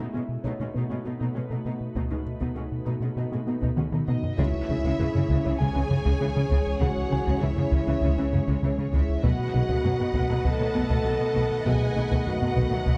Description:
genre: cinematic, hybrid orchestral and electronic film score.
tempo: 99 BPM.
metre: 4/4.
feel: straight.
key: C# minor.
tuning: A4 = 440 Hz.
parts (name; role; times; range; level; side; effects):
warm symphonic viola section; accompaniment; 0.0-13.0 s; C#3 to B4; -40 LUFS; equal; none.
dark French horn section; sustained chords; 0.0-13.0 s; A3 to A4; -34 LUFS; equal; none.
glassy FM pad; sustained chords; 0.0-13.0 s; G#3 to D#5; -39 LUFS; equal; none.
soft round pluck; arpeggios; 0.0-13.0 s; C#3 to A4; -39 LUFS; equal; none.
round analog bass; riff; 0.0-13.0 s; C#2 to B3; -32 LUFS; equal; none.
rich symphonic cello section; bass; 0.0-12.9 s; B2 to C#3; -34 LUFS; equal; none.
felt-muted upright piano; texture; 0.0-13.0 s; C#4 to G#5; -45 LUFS; equal; none.
taiko ensemble; drums; 0.4-13.0 s; none; -32 LUFS; equal; none.
warm symphonic violin section; melody; 4.1-13.0 s; D#5 to A5; -41 LUFS; equal; none.
warm symphonic violin section; second line; 4.4-13.0 s; C#5 to F#5; -39 LUFS; equal; none.
warm trombone section; sustained chords; 4.4-13.0 s; D#3 to C#4; -40 LUFS; equal; none.
warm symphonic double bass section; bass; 4.4-12.9 s; B1 to C#2; -32 LUFS; equal; none.
room: moderate recital hall reverb, RT60 1.6 s.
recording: dark, warm production, nothing above 10.7 kHz.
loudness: -26 LUFS.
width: mono.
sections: 0.0-4.4 A section; 4.4-13.0 B section.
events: drum fill 3.8-4.4.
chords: 0.0 B7; 4.4 C#m; 9.2 B7.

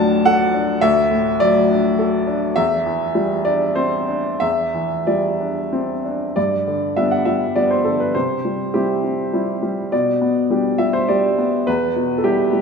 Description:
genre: neoclassical minimalist piano.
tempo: 89-108 BPM.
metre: 3/4.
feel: rubato.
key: G major.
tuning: A4 = 440 Hz.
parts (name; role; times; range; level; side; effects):
clear upright piano; solo; 0.0-12.6 s; D2 to A5; -16 LUFS; equal; none.
room: wet scoring stage reverb, RT60 1.4 s.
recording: recorded in a church or concert hall.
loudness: -16 LUFS.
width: side -5 dB against mid.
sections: 0.0-6.4 A section; 6.4-12.6 B section.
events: none.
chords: 0.0 D; 2.6 Cadd9/E; 6.4 G; 8.1 C; 9.9 G/B; 11.7 Em.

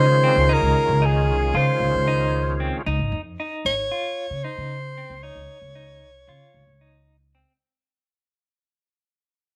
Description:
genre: progressive instrumental, progressive.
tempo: 228 BPM (eighths).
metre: 9/8.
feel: straight.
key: Db major.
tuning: A4 = 440 Hz.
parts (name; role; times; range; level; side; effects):
clear soprano saxophone; melody; 0.0-7.1 s; Ab4 to Db5; -25 LUFS; equal; none.
overdriven tonewheel organ; accompaniment; 0.0-2.8 s; Eb3 to F4; -29 LUFS; equal; chorus vibrato, slow rotary speaker.
clean electric guitar; arpeggios; 0.0-7.5 s; C4 to F4; -31 LUFS; equal; tremolo.
upright bass; bass; 0.0-7.4 s; Ab1 to Db3; -25 LUFS; equal; none.
room: little or no reverb.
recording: none.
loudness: -22 LUFS.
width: mono.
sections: 0.0-7.6 A section.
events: fade-out 0.0-7.6.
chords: 0.0 Dbmaj9.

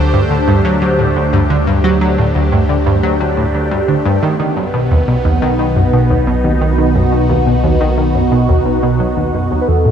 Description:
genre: ambient, sequencer-driven space music.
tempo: 88 BPM.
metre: 4/4.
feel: straight.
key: unclear.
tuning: A4 = 440 Hz.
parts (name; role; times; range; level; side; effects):
phased analog pad; sustained chords; 0.0-9.9 s; A3 to C5; -16 LUFS; right 1 dB; phaser, chorus.
tight sequenced synth; riff; 0.0-9.9 s; D2 to F#3; -14 LUFS; equal; chorus, cassette tape, analog delay.
fat analog bass; bass; 0.0-9.9 s; E1 to D2; -18 LUFS; equal; none.
soft octave-layered synth lead; melody; 9.6-9.9 s; A4 to B4; -16 LUFS; left 2 dB; chorus, cassette tape.
room: moderate huge ambient reverb, RT60 7.8 s.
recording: in a vast, echoing space, cassette tape, nothing above 10.3 kHz.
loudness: -11 LUFS.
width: side -8 dB against mid.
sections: 0.0-9.9 A section.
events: none.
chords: 0.0 D7sus4; 4.2 B.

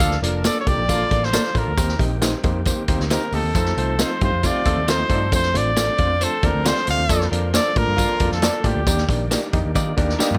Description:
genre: uptempo 1960s-style soul.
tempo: 135 BPM.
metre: 4/4.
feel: straight.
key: unclear.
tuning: A4 = 441 Hz.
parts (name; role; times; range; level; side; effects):
clear trumpet; melody; 0.0-9.1 s; G4 to F5; -25 LUFS; equal; none.
warm horn section; second line; 0.0-8.4 s; C3 to C5; -31 LUFS; equal; none.
overdriven reed electric piano; accompaniment; 0.0-10.4 s; A3 to F5; -29 LUFS; equal; fast tremolo.
overdriven tonewheel organ; sustained chords; 0.0-10.4 s; Eb3 to C5; -36 LUFS; equal; none.
vintage muted picked electric bass; bass; 0.0-10.4 s; F1 to Eb3; -26 LUFS; equal; none.
vintage drum kit; drums; 0.0-10.4 s; hi-hat, kick drum, snare drum, toms; -25 LUFS; equal; none.
tambourine; percussion; 0.0-10.3 s; none; -31 LUFS; equal; none.
electric guitar through a small old amp; stabs; 0.4-10.3 s; Bb3 to Eb5; -29 LUFS; equal; spring reverb.
direct-recorded clean electric guitar; riff; 4.7-7.1, 9.8-10.4 s; Bb3 to D5; -32 LUFS; equal; phaser.
room: little or no reverb.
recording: none.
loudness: -20 LUFS.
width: mono.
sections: 0.0-10.4 A section.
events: drum fill 10.2.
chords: 0.0 Bbmaj7; 1.8 Eb6; 3.5 F7; 5.3 Dm7; 7.1 Bbmaj7/F; 8.9 Ebmaj7.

